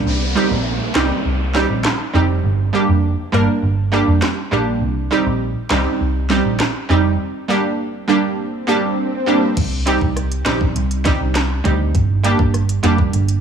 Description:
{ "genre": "dancehall", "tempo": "101 BPM", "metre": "4/4", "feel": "straight", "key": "C minor", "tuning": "A4 = 441 Hz", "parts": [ { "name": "nylon-string guitar", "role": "arpeggios", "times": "0.0-0.6 s", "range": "G3 to Bb3", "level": "-28 LUFS", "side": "left 6 dB", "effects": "none" }, { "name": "vintage muted picked electric bass", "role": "bass", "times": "0.0-13.4 s", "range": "F1 to D2", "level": "-18 LUFS", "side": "right 1 dB", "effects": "none" }, { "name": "downlifter and swell", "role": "sound effects", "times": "0.1-9.6 s", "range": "none", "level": "-26 LUFS", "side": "left 1 dB", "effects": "none" }, { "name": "analog pluck", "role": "accompaniment", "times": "0.4-13.0 s", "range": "G3 to Bb4", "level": "-18 LUFS", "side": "right 3 dB", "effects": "chorus" }, { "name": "island pop drum kit", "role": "drums", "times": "1.0-13.4 s", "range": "crash cymbal, handclaps, hi-hat, kick drum, rim click, snare drum", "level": "-21 LUFS", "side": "equal", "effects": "none" } ], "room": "digital ambience", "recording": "small room ambience, faint mains hum", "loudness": "-15 LUFS", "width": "side -7 dB against mid", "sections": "0.1-9.6 A section; 9.6-13.4 B section", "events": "swell 8.3-9.6", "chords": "0.1 Cm; 2.4 Gm; 4.8 Cm; 7.2 Gm; 9.6 Cm; 11.9 Gm" }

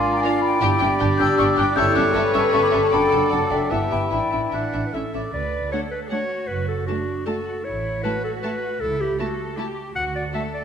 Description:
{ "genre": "cinematic, playful, whimsical film cue", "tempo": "156 BPM", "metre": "3/4", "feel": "straight", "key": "D major", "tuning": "A4 = 439 Hz", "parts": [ { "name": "large celesta", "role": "melody", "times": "0.0-4.9 s", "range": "G5 to G6", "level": "-24 LUFS", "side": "left 6 dB", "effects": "none" }, { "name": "clear clarinet", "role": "second line", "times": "0.0-10.6 s", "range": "F4 to F#5", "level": "-26 LUFS", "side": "left 1 dB", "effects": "none" }, { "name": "clear oboe", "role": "second line", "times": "0.0-5.3 s", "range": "C#5 to F#5", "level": "-28 LUFS", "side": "right 2 dB", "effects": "none" }, { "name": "hollow silver concert flute", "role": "second line", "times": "0.0-4.9 s", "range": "E5 to E6", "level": "-27 LUFS", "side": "left 2 dB", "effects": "none" }, { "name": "warm bassoon", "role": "accompaniment", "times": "0.0-5.1 s", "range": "E3 to Bb3", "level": "-29 LUFS", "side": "right 1 dB", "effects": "none" }, { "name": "dark French horn section", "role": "sustained chords", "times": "0.0-5.1 s", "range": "B3 to A4", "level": "-25 LUFS", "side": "left 1 dB", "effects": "none" }, { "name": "muted chamber cello section", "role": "bass", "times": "0.0-10.6 s", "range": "D4 to B4", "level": "-30 LUFS", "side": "right 3 dB", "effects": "none" }, { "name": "muted chamber violin section", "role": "melody", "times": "0.2-10.4 s", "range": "D5 to A5", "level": "-34 LUFS", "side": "left 3 dB", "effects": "none" }, { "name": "muted symphonic violin section", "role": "second line", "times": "0.2-10.4 s", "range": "D4 to Bb4", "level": "-33 LUFS", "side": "left 4 dB", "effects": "none" }, { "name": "muted chamber viola section", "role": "accompaniment", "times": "0.2-10.4 s", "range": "A3 to D4", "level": "-30 LUFS", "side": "equal", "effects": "none" }, { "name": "muted studio double bass section", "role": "bass", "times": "0.6-10.3 s", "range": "F#1 to D2", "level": "-28 LUFS", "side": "right 3 dB", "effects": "none" } ], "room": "wet scoring stage reverb, RT60 1.5 s", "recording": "none", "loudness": "-19 LUFS", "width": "side -7 dB against mid", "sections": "0.0-5.3 A section; 5.3-10.6 B section", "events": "none", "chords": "0.0 Bb7; 0.6 G; 1.8 A7/G; 2.9 D/F#; 3.7 Em/G; 4.1 Asus4; 4.9 A; 5.3 D; 6.5 D/F#; 7.7 A; 8.8 A/C#; 10.0 D" }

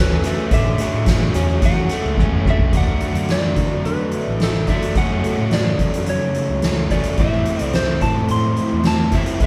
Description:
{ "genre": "psychedelic rock", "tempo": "108 BPM", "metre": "4/4", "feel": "straight", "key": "D lydian", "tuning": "A4 = 440 Hz", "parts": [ { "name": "electric slide guitar", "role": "melody", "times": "0.0-9.5 s", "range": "A4 to C6", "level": "-28 LUFS", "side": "equal", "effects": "none" }, { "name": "soft string machine", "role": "sustained chords", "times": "0.0-9.5 s", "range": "C#3 to C5", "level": "-33 LUFS", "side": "equal", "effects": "none" }, { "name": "overdriven electric guitar", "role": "riff", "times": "0.0-9.5 s", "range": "F#2 to E4", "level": "-24 LUFS", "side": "equal", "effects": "none" }, { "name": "fingered electric bass", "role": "bass", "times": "0.0-9.5 s", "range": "E1 to F#3", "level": "-26 LUFS", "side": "equal", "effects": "none" }, { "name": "soft-mallet drum kit", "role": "drums", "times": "0.2-9.5 s", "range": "hi-hat, kick drum, snare drum, toms", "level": "-22 LUFS", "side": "equal", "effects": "none" }, { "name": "maracas", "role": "percussion", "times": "0.3-2.6 s", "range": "none", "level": "-44 LUFS", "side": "equal", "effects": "none" } ], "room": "light reverb", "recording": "band playing live in one room", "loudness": "-18 LUFS", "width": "mono", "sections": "0.0-2.7 A section; 2.7-9.5 B section", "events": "drum fill 2.2-2.7", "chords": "0.0 F#madd9; 2.7 D; 5.0 F#m; 7.2 Am" }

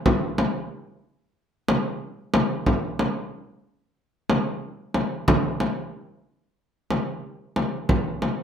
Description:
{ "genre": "arabic", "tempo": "92 BPM", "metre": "4/4", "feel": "straight", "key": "none", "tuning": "none", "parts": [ { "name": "frame drum", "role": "percussion", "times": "0.1-8.4 s", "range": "none", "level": "-22 LUFS", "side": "equal", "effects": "none" } ], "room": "moderate small room reverb, RT60 0.5 s", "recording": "none", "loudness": "-23 LUFS", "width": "side -8 dB against mid", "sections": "0.0-2.7 A section; 2.7-8.4 B section", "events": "none", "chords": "none" }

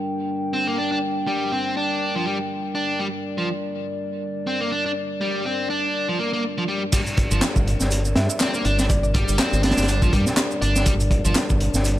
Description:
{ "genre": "breakbeat, breaks", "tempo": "122 BPM", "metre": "4/4", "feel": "swing 57% on 16ths", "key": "unclear", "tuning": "A4 = 440 Hz", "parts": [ { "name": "dark analog pad", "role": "sustained chords", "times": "0.0-12.0 s", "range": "G3 to G5", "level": "-27 LUFS", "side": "left 1 dB", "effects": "chorus, sidechain pumping" }, { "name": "biting overdriven guitar", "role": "riff", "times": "0.5-11.4 s", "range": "F3 to D4", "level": "-25 LUFS", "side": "equal", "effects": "ping-pong delay" }, { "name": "crunchy breakbeat drum kit", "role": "drums", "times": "6.9-12.0 s", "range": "crash cymbal, hi-hat, kick drum, snare drum", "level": "-21 LUFS", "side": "equal", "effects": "none" }, { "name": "electronic shaker and handclaps", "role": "drums", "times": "6.9-12.0 s", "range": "none", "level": "-28 LUFS", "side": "equal", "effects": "low-pass filter on perc, low-pass filter on snare" }, { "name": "fingered electric bass with an envelope filter", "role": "bass", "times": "7.3-12.0 s", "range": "G1 to G2", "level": "-22 LUFS", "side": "equal", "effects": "tube saturation" }, { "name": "mallet-like synth pluck", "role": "melody", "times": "8.2-10.8 s", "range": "D5 to E5", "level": "-33 LUFS", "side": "equal", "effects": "chorus, small speaker sound, ping-pong delay" } ], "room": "light reverb, studio reverb", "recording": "none", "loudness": "-20 LUFS", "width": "side -14 dB against mid", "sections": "0.0-6.9 A section; 6.9-12.0 B section", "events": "drop 6.9-12.0", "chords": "0.0 Gm" }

